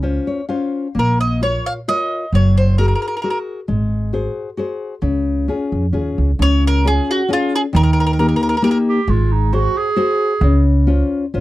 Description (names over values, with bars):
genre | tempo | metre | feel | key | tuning
italian folk, Italian serenade | 133 BPM | 3/4 | swing 53% on 8ths, rubato | Db major | A4 = 445 Hz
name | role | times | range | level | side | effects
nylon-string guitar | accompaniment | 0.0-11.4 s | Db3 to F5 | -19 LUFS | left 3 dB | none
upright bass | bass | 0.0-11.4 s | Gb1 to F2 | -16 LUFS | right 1 dB | none
bowl-back mandolin | melody | 1.0-3.4, 6.4-8.8 s | F4 to F5 | -20 LUFS | right 1 dB | none
warm clarinet | second line | 8.9-10.7 s | Eb4 to Ab4 | -19 LUFS | right 5 dB | none
room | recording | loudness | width
little or no reverb | dry, close 1970s-style studio recording | -15 LUFS | side -16 dB against mid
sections
0.0-6.4 A section; 6.4-11.4 A section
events
nylon-string guitar fill 0.0-1.0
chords
0.0 Dbmaj7; 1.0 Bbm; 2.3 Gbadd9; 3.7 Ab7; 5.0 Db; 7.7 Eb; 9.1 Ab7; 10.4 Dbmaj7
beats
0.04 0.50 | 0.96 1.42 1.88 | 2.33 2.79 3.24 | 3.68 4.12 4.57 | 5.02 5.47 5.93 | 6.39 6.85 7.30 | 7.74 8.19 8.63 | 9.08 9.52 9.97 | 10.41 10.87 11.34